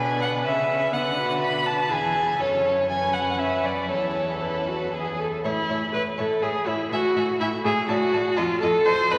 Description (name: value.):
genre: quick classical-period movement for string quartet.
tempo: 122 BPM.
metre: 3/4.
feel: straight.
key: A major.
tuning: A4 = 438 Hz.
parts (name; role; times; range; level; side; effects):
dark violin; melody; 0.0-9.2 s; B4 to B5; -28 LUFS; equal; none.
rich violin; second line; 0.0-9.2 s; G#4 to E5; -34 LUFS; equal; none.
clear viola; accompaniment; 0.0-9.2 s; B3 to C5; -27 LUFS; equal; none.
rich cello; bass; 0.0-9.2 s; E2 to D3; -34 LUFS; equal; none.
room: wet cathedral reverb, RT60 5.8 s.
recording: vinyl crackle.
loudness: -24 LUFS.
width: mono.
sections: 0.0-5.4 A section; 5.4-9.2 B section.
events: none.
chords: 0.4 C#m7; 0.9 Bm/D; 1.9 E; 2.4 F#m; 3.9 Esus4; 4.9 E; 5.4 A; 6.9 E/A; 7.9 D (rootless); 8.4 F7.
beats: 0.44 | 0.92 1.41 1.90 | 2.39 2.89 3.39 | 3.90 4.42 4.94 | 5.45 5.94 6.43 | 6.92 7.41 7.89 | 8.38 8.87.